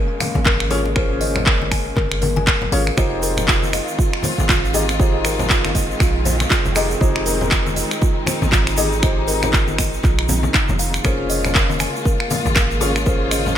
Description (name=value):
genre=afro house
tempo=119 BPM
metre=4/4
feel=swing 59% on 16ths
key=F minor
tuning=A4 = 444 Hz
part: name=warm studio string section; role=sustained chords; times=0.0-13.6 s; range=Db3 to F4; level=-26 LUFS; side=left 1 dB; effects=sidechain pumping
part: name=kalimba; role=arpeggios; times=0.0-13.4 s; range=C4 to Ab5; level=-26 LUFS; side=equal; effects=sidechain pumping, digital delay
part: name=felt-muted upright piano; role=stabs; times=0.0-13.6 s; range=Db4 to Eb5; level=-25 LUFS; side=left 3 dB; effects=sidechain pumping, digital delay
part: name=house drum kit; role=drums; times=0.2-13.4 s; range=finger snaps, handclaps, hi-hat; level=-22 LUFS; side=equal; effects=studio reverb
part: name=congas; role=percussion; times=0.2-13.5 s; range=none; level=-27 LUFS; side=left 3 dB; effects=none
part: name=warm 808-style bass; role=bass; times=0.4-13.6 s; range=F1 to Bb1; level=-23 LUFS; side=right 1 dB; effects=sidechain pumping
part: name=electronic kick drum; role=drums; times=0.5-13.2 s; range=none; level=-19 LUFS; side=equal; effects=studio reverb
part: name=egg shaker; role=percussion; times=3.0-13.6 s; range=none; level=-30 LUFS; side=right 5 dB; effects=none
room=light reverb, small room ambience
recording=bright 1980s-style digital production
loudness=-16 LUFS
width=side -10 dB against mid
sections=0.0-13.6 A section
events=none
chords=0.0 Bbm7; 3.0 Fm7; 11.0 Bbm7/F